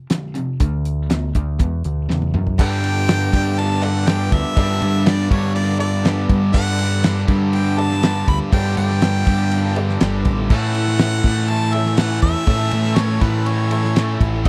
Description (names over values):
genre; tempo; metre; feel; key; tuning
classic rock; 121 BPM; 4/4; straight; unclear; A4 = 440 Hz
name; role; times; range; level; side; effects
cranked stack guitar; riff; 0.0-14.5 s; E2 to A4; -28 LUFS; equal; overdrive
cranked stack guitar; riff; 0.0-14.5 s; E2 to B3; -29 LUFS; equal; overdrive
cloth-damped thuddy drum kit; drums; 0.1-14.5 s; crash cymbal, hi-hat, kick drum, ride cymbal, snare drum, toms; -22 LUFS; equal; none
overdriven picked electric bass; bass; 0.6-14.5 s; G1 to A2; -22 LUFS; equal; none
clear harmonica; melody; 2.6-14.5 s; B4 to B5; -27 LUFS; equal; none
honky-tonk upright piano; accompaniment; 2.6-14.5 s; E4 to E5; -36 LUFS; equal; none
picked twelve-string acoustic guitar; accompaniment; 2.6-14.5 s; A2 to A4; -36 LUFS; equal; none
bright tonewheel organ; sustained chords; 10.2-14.5 s; A3 to D5; -39 LUFS; equal; none
room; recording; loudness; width
small room ambience; dry, close 1970s-style studio recording; -18 LUFS; mono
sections
0.0-2.6 A section; 2.6-14.5 B section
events
drum fill 2.1-2.6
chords
0.0 F5; 0.6 D5; 1.6 E5; 2.6 Gadd9; 10.5 A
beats
0.11 | 0.61 1.11 1.60 2.10 | 2.59 3.09 3.58 4.07 | 4.57 5.06 5.55 6.05 | 6.54 7.04 7.53 8.03 | 8.52 9.01 9.51 10.00 | 10.50 10.99 11.49 11.98 | 12.48 12.97 13.47 13.96 | 14.46